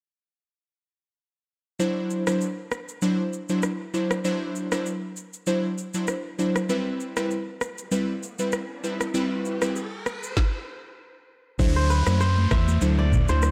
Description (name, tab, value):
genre	afrobeats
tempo	98 BPM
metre	4/4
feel	swing 55% on 16ths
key	D mixolydian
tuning	A4 = 441 Hz
part	glassy digital keys	accompaniment	1.8-13.5 s	F#3 to C5	-28 LUFS	equal	chorus
part	afro-pop drum kit	drums	1.8-13.5 s	kick drum, rim click, shaker, snare drum, toms	-30 LUFS	equal	none
part	riser and downlifter	sound effects	7.8-13.5 s	none	-40 LUFS	equal	none
part	fingered electric bass	bass	11.6-13.5 s	D2 to F#2	-24 LUFS	equal	none
part	congas	percussion	11.6-13.4 s	none	-35 LUFS	equal	none
part	kora	riff	11.8-13.5 s	B4 to E5	-30 LUFS	equal	tape echo
room	light reverb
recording	dark, warm production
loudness	-26 LUFS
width	mono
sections	1.8-11.6 A section; 11.6-13.5 B section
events	riser 7.8-11.6; stop 10.4-11.6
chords	1.8 D9; 6.7 Cmaj7; 11.6 D9